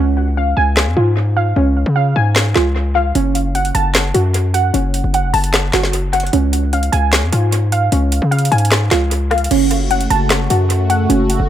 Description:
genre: hip hop, trap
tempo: 151 BPM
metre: 4/4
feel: half-time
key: F# harmonic minor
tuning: A4 = 440 Hz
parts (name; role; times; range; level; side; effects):
- warbly dusty pluck; arpeggios; 0.0-11.5 s; C#4 to A5; -17 LUFS; right 2 dB; chorus, low-pass filter, analog delay
- distorted 808-style bass; bass; 0.0-11.5 s; E#1 to C#3; -16 LUFS; equal; distortion
- trap drum kit; drums; 0.8-11.4 s; crash cymbal, handclaps, hi-hat, rim click, snare drum; -19 LUFS; equal; analog delay
- warm analog pad; sustained chords; 9.5-11.5 s; C#3 to F#4; -20 LUFS; equal; chorus
room: light reverb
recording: echo-heavy mix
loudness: -13 LUFS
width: side -11 dB against mid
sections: 0.0-9.5 A section; 9.5-11.5 B section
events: break 0.0-3.2; hi-hats muted 1.6-3.2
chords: 0.0 C#; 3.2 F#m; 6.3 C#; 9.5 F#m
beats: 0.37 0.77 1.17 | 1.56 1.96 2.36 2.75 | 3.15 3.55 3.95 4.34 | 4.74 5.14 5.54 5.93 | 6.33 6.73 7.13 7.52 | 7.92 8.32 8.71 9.11 | 9.51 9.91 10.30 10.70 | 11.10

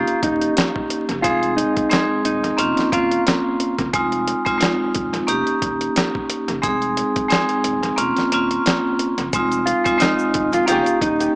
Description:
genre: hip hop, boom-bap hip-hop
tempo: 89 BPM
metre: 4/4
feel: swing 55% on 16ths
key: F minor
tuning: A4 = 440 Hz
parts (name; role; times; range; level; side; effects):
- mellow electric guitar; melody; 0.0-3.2, 9.7-11.3 s; Eb4 to F4; -20 LUFS; equal; high-pass filter, low-pass filter, analog delay
- vibraphone with medium hard mallets; accompaniment; 0.0-11.4 s; Ab3 to Ab4; -19 LUFS; equal; cassette tape, high-pass filter, low-pass filter
- sub bass with octave; bass; 0.0-11.3 s; Eb1 to Gb1; -34 LUFS; equal; none
- dusty soul sampler-style drum kit; drums; 0.1-11.3 s; hi-hat, kick drum, snare drum; -22 LUFS; equal; analog delay
- tube shaker; percussion; 9.3-11.3 s; none; -37 LUFS; left 1 dB; none
- warm studio string section; stabs; 10.7-10.8 s; Eb3 to G4; -25 LUFS; left 1 dB; high-pass filter, low-pass filter, analog delay
room: moderate spring reverb, RT60 1.9 s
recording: echo-heavy mix, vinyl crackle, small speaker sound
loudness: -17 LUFS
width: side -28 dB against mid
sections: 0.0-9.3 A section; 9.3-11.4 B section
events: kick muted 8.0-9.3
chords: 0.0 Eb7; 1.2 Ab/F; 2.6 Bbmadd9; 3.9 Fm7; 5.3 Eb7; 6.6 Ab/F; 8.0 Bbmadd9; 9.3 Fm7; 10.7 Eb7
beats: 0.57 | 1.24 1.92 2.59 3.27 | 3.94 4.61 5.29 5.96 | 6.64 7.31 7.99 8.66 | 9.33 10.01 10.68

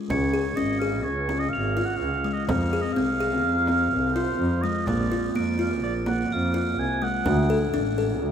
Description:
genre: contemporary instrumental, chamber music in an uneven meter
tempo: 126 BPM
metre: 5/4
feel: straight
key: Db major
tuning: A4 = 438 Hz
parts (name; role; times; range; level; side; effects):
- warm oboe; melody; 0.1-7.5 s; C5 to Ab5; -28 LUFS; right 3 dB; none
- buzzing kalimba; arpeggios; 0.1-8.3 s; Ab3 to A4; -26 LUFS; left 2 dB; none
- rich double bass; bass; 0.1-8.3 s; Ab1 to F2; -27 LUFS; right 1 dB; none
- frame drum; percussion; 0.1-8.1 s; none; -34 LUFS; right 2 dB; none
- crotales; texture; 0.1-7.1 s; Db7 to Bb7; -37 LUFS; left 2 dB; stereo widening
room: wet cathedral reverb, RT60 7.1 s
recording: in a vast, echoing space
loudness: -22 LUFS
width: side -8 dB against mid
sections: 0.1-8.3 A section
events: none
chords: 0.1 Db; 2.5 Fm; 4.9 Bb; 7.3 D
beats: | 0.10 0.57 1.05 1.53 2.01 | 2.48 2.96 3.44 3.92 4.39 | 4.87 5.35 5.83 6.30 6.78 | 7.26 7.73 8.21

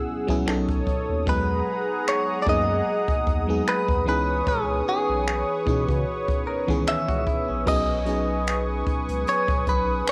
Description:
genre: contemporary R&B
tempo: 75 BPM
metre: 4/4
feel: swing 54% on 16ths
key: B major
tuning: A4 = 441 Hz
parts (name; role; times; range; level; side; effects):
- direct-recorded clean electric guitar; melody; 0.0-10.1 s; G#4 to E5; -28 LUFS; equal; spring reverb, cassette tape
- FM electric piano; accompaniment; 0.0-10.1 s; D#3 to A4; -31 LUFS; equal; chorus, cassette tape
- warm analog pad; sustained chords; 0.0-10.1 s; G#4 to E6; -32 LUFS; equal; chorus, cassette tape
- round analog bass; bass; 0.1-10.1 s; G#1 to C#3; -31 LUFS; equal; none
- jazz brush drum kit; drums; 0.3-10.1 s; crash cymbal, finger snaps, hi-hat, kick drum; -30 LUFS; equal; cassette tape
- direct-recorded clean electric guitar; arpeggios; 6.5-7.9 s; C#4 to A#4; -38 LUFS; equal; cassette tape, tape echo
room: light reverb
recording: home recording on cassette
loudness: -24 LUFS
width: mono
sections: 0.0-7.7 A section; 7.7-10.1 B section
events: none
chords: 0.5 B9; 1.3 Emaj9#11; 4.1 C#m9; 7.7 B69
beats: 0.47 | 1.27 2.07 2.87 3.67 | 4.47 5.27 6.07 6.87 | 7.67 8.47 9.27 10.07

